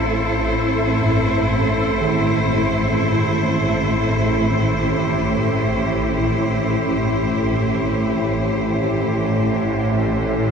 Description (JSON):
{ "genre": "dark ambient drone", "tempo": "free time", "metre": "none", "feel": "none", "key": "unclear", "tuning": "A4 = 440 Hz", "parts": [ { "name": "rich studio cello section", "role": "sustained chords", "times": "0.0-10.5 s", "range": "A3 to C5", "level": "-21 LUFS", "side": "equal", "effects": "none" }, { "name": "bronze singing bowl", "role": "arpeggios", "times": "0.0-8.1 s", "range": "G2 to C4", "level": "-26 LUFS", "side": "right 3 dB", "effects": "tape echo" }, { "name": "swarming drone", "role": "drone", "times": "0.0-10.5 s", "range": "A1 to A2", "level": "-20 LUFS", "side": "equal", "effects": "built-in reverb" } ], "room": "wet huge ambient reverb, RT60 8.1 s", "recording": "none", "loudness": "-17 LUFS", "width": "side -6 dB against mid", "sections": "0.0-10.5 A section", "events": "none", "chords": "0.0 Am" }